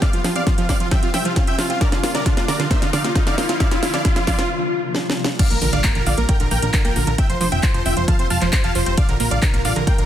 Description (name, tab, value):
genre	uplifting trance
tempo	134 BPM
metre	4/4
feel	straight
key	unclear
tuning	A4 = 440 Hz
part	big supersaw lead	melody	0.0-10.1 s	F4 to A5	-24 LUFS	right 1 dB	sidechain pumping, dub echo
part	analog pluck	arpeggios	0.0-10.0 s	D3 to C4	-27 LUFS	right 4 dB	chorus, sidechain pumping, dub echo
part	electronic kick drum	drums	0.0-10.0 s	none	-19 LUFS	equal	studio ambience
part	house drum kit	drums	0.0-10.1 s	crash cymbal, handclaps, hi-hat, ride cymbal, snare drum	-24 LUFS	equal	studio ambience
part	riser and impact	sound effects	0.0-7.2 s	none	-28 LUFS	left 1 dB	none
part	plucky analog bass	bass	5.5-10.1 s	F1 to Bb1	-22 LUFS	equal	sidechain pumping
room	light reverb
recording	dense, heavily limited modern master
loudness	-16 LUFS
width	side -11 dB against mid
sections	0.0-5.4 A section; 5.4-10.1 B section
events	build-up 0.0-5.4; drum fill 0.0-4.5, 4.9-5.4; riser 0.0-4.5; break 4.5-5.4; drop 5.4-10.1; impact 5.4-7.2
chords	0.0 Fsus2/C; 1.8 Bb; 3.6 Fsus2; 5.4 Bb; 7.2 Fsus2; 9.0 Bb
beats	| 0.02 0.47 0.92 1.36 | 1.81 2.26 2.71 3.15 | 3.60 4.05 4.50 4.95 | 5.39 5.84 6.29 6.74 | 7.18 7.63 8.08 8.53 | 8.98 9.42 9.87